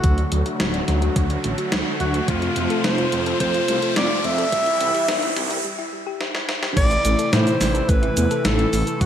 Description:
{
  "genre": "synthwave",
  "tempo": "107 BPM",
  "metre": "4/4",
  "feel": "straight",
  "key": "A minor",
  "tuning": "A4 = 440 Hz",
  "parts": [
    { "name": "clear alto saxophone", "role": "melody", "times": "0.0-9.1 s", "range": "F4 to E5", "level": "-24 LUFS", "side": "right 1 dB", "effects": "tape echo" },
    { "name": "warm analog pad", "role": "sustained chords", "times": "0.0-9.1 s", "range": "C3 to F#4", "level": "-26 LUFS", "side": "equal", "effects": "lush chorus, sidechain pumping" },
    { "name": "thumb-piano-like synth pluck", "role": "arpeggios", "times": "0.0-9.1 s", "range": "F#3 to A4", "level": "-29 LUFS", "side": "left 2 dB", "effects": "chorus, ping-pong delay" },
    { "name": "wide detuned saw bass", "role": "bass", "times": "0.0-9.1 s", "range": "D1 to A2", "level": "-23 LUFS", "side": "equal", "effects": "chorus, tube saturation" },
    { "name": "electronic kick drum", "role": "drums", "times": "0.0-9.1 s", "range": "none", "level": "-20 LUFS", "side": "equal", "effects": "none" },
    { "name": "gated 80s digital drum machine", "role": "drums", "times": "0.0-9.1 s", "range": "cabasa, crash cymbal, hi-hat, snare drum", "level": "-25 LUFS", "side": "equal", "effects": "gated reverb, gated reverb snare" },
    { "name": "riser", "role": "sound effects", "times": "0.0-5.6 s", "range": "none", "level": "-28 LUFS", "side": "left 2 dB", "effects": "none" }
  ],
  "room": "moderate lush hall reverb, RT60 2.4 s",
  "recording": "high-pass filter",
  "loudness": "-18 LUFS",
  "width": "side -9 dB against mid",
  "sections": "0.0-6.8 A section; 6.8-9.1 B section",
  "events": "riser 0.0-5.6; filter sweep on synth arpeggio sound 0.0-6.8; filter sweep 0.0-6.8; break 5.6-6.8; drum fill 6.2-6.8",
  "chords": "0.0 D; 2.3 F; 4.5 C; 6.8 Am"
}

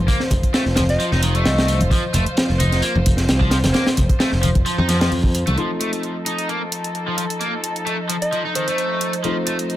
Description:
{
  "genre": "breakbeat, breaks",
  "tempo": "131 BPM",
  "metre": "4/4",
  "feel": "swing 54% on 16ths",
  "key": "unclear",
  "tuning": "A4 = 440 Hz",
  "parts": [
    { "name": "dark studio string section", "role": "sustained chords", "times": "0.0-9.8 s", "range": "F3 to C5", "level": "-27 LUFS", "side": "left 1 dB", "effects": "sidechain pumping, low-pass filter" },
    { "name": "modern bright picked electric bass", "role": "bass", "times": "0.0-5.6 s", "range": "F1 to F2", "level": "-19 LUFS", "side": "equal", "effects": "none" },
    { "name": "crunchy overdriven guitar", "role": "riff", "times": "0.1-9.6 s", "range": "Eb3 to Eb4", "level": "-24 LUFS", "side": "equal", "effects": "tube saturation, low-pass filter, digital delay" },
    { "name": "crunchy breakbeat drum kit", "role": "drums", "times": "0.1-5.5 s", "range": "hi-hat, kick drum, snare drum", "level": "-19 LUFS", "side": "equal", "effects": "none" },
    { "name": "electronic hi-hat", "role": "drums", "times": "0.1-9.8 s", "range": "none", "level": "-28 LUFS", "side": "right 2 dB", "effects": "none" },
    { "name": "congas", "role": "percussion", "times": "0.3-5.6 s", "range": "none", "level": "-26 LUFS", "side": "left 1 dB", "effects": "none" },
    { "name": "soft struck synth lead", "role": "melody", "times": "0.9-1.8, 8.2-9.2 s", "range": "C5 to Eb5", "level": "-26 LUFS", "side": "right 1 dB", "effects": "chorus, AM radio sound, digital delay" },
    { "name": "dark concert grand piano", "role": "stabs", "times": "5.6-9.8 s", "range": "A3 to F4", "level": "-29 LUFS", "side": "left 2 dB", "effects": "low-pass filter, digital delay" }
  ],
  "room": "light reverb, small room ambience",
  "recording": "none",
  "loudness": "-17 LUFS",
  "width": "side -13 dB against mid",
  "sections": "0.0-5.6 A section; 5.6-9.8 B section",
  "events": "none",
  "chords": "0.0 F; 5.6 F7"
}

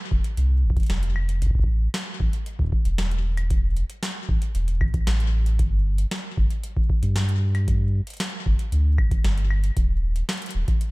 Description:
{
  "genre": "IDM",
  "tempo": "115 BPM",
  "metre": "4/4",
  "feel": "straight",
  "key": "unclear",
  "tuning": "A4 = 438 Hz",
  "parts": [
    { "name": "warm sub bass", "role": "bass", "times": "0.1-10.6 s", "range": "Eb1 to G2", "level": "-21 LUFS", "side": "equal", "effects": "none" },
    { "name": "electronic kick drum", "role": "drums", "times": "0.1-10.8 s", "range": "none", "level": "-23 LUFS", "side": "equal", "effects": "none" },
    { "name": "booming analog drum machine", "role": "drums", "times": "0.2-10.9 s", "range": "claves, hi-hat, snare drum", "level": "-32 LUFS", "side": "equal", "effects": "ping-pong delay" }
  ],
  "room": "little or no reverb",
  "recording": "none",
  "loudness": "-21 LUFS",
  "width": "side -23 dB against mid",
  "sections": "0.0-10.9 A section",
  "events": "none",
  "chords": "none"
}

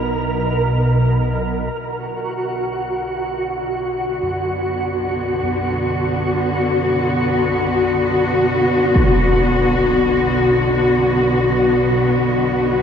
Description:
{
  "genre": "dark ambient drone",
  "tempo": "free time",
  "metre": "none",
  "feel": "none",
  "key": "B harmonic minor",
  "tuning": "A4 = 439 Hz",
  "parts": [
    { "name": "dark studio cello section", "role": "sustained chords", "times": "0.0-12.8 s", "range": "D3 to F#4", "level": "-18 LUFS", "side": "left 2 dB", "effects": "none" },
    { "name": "gamelan-type bossed gongs", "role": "arpeggios", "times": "0.0-12.6 s", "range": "F#2 to C#4", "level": "-31 LUFS", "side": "right 2 dB", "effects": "diffuse ambient delay" },
    { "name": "organ-like drone", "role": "drone", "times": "0.0-12.8 s", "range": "B1 to B2", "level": "-22 LUFS", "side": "equal", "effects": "ensemble chorus, built-in reverb" },
    { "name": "flickering grainy texture", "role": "texture", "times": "0.0-12.8 s", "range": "F#4 to A#4", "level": "-22 LUFS", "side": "right 1 dB", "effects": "built-in reverb" },
    { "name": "impact", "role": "percussion", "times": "9.0-9.2 s", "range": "none", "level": "-20 LUFS", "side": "equal", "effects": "low-pass filter on sfx" }
  ],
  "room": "wet huge ambient reverb, RT60 7.6 s",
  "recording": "cassette tape",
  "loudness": "-16 LUFS",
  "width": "side -7 dB against mid",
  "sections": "0.0-1.8 A section; 1.8-12.8 B section",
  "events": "fade-in on synth drone 1.8-12.8; fade-in on kettle gongs 1.8-12.8; fade-out on synth texture 1.8-12.8",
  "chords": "0.0 Bm"
}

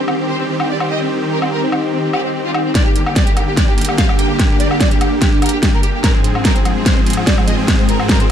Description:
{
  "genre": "heavy wobble dubstep",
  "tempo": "146 BPM",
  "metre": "4/4",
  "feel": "half-time",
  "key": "G phrygian",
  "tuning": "A4 = 440 Hz",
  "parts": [
    { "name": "rich studio violin section", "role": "melody", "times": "0.0-8.3 s", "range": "C4 to G5", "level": "-23 LUFS", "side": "right 1 dB", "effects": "tape echo" },
    { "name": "supersaw chords", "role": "sustained chords", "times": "0.0-8.3 s", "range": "Ab2 to Ab4", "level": "-21 LUFS", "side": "right 1 dB", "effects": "sidechain pumping" },
    { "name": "deep dark ambient pad", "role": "texture", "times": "0.0-8.3 s", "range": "Ab3 to Ab5", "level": "-20 LUFS", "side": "left 1 dB", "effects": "chorus, built-in reverb, sidechain pumping" },
    { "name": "dubstep drum kit", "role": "drums", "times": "0.1-8.3 s", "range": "hi-hat, snare drum, woodblock", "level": "-18 LUFS", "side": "equal", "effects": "studio reverb" },
    { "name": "electronic kick drum", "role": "drums", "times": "2.8-8.2 s", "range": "none", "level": "-15 LUFS", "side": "equal", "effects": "studio reverb" }
  ],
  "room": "light reverb",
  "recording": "dark, warm production",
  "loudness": "-12 LUFS",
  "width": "side -9 dB against mid",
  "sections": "0.0-2.8 A section; 2.8-8.3 B section",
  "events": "build-up 2.8-8.3; drum fill 2.8-8.3",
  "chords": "0.0 Cm; 2.8 Gm; 6.0 Fm/Ab"
}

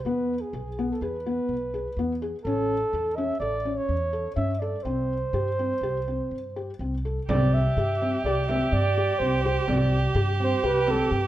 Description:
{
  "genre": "contemporary instrumental, chamber music in an uneven meter",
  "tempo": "125 BPM",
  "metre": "5/4",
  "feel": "straight",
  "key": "C major",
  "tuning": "A4 = 438 Hz",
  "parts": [
    { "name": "breathy flugelhorn", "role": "melody", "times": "0.0-11.3 s", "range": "G4 to E5", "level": "-28 LUFS", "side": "right 2 dB", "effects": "none" },
    { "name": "felt-muted upright piano", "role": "arpeggios", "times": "0.1-11.1 s", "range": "B3 to A4", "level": "-30 LUFS", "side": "left 2 dB", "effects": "none" },
    { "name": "upright bass", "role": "bass", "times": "0.1-11.3 s", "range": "A1 to G2", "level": "-28 LUFS", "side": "equal", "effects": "none" },
    { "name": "warm cello", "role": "second line", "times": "7.3-11.3 s", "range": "G4", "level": "-29 LUFS", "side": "right 4 dB", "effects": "none" },
    { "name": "frame drum", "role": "percussion", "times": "7.3-11.1 s", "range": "none", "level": "-33 LUFS", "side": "right 2 dB", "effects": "none" }
  ],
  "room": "light reverb",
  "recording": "none",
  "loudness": "-23 LUFS",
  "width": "side -13 dB against mid",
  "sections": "0.0-7.3 A section; 7.3-11.3 B section",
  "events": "none",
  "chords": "0.1 E; 2.4 A; 4.8 C5; 7.3 C"
}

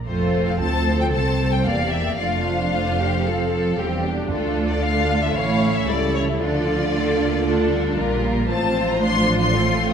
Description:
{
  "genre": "quick classical-period movement for string orchestra",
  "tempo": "114 BPM",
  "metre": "4/4",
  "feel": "straight",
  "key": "F major",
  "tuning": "A4 = 442 Hz",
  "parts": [
    { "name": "rich symphonic violin section", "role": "melody", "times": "0.1-9.9 s", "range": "A4 to C6", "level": "-25 LUFS", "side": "left 4 dB", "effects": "none" },
    { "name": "rich symphonic violin section", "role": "second line", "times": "0.1-9.9 s", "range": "D4 to D5", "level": "-24 LUFS", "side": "left 2 dB", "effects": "none" },
    { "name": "rich symphonic viola section", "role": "accompaniment", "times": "0.1-9.9 s", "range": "F3 to F4", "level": "-25 LUFS", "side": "right 2 dB", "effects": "none" },
    { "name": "rich symphonic cello section", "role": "bass", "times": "0.1-9.9 s", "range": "C2 to D3", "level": "-25 LUFS", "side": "right 2 dB", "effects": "none" },
    { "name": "rich symphonic double bass section", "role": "bass", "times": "0.1-9.9 s", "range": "E1 to D2", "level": "-26 LUFS", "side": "right 2 dB", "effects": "none" }
  ],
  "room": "wet concert hall reverb, RT60 2.4 s",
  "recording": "minimal, uncompressed stereo recording",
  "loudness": "-18 LUFS",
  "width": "side -7 dB against mid",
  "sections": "0.1-9.9 A section",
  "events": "none",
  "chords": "0.1 F; 1.1 C7; 2.2 F; 4.3 Dm; 5.4 A7; 6.4 Dm; 8.5 F/A"
}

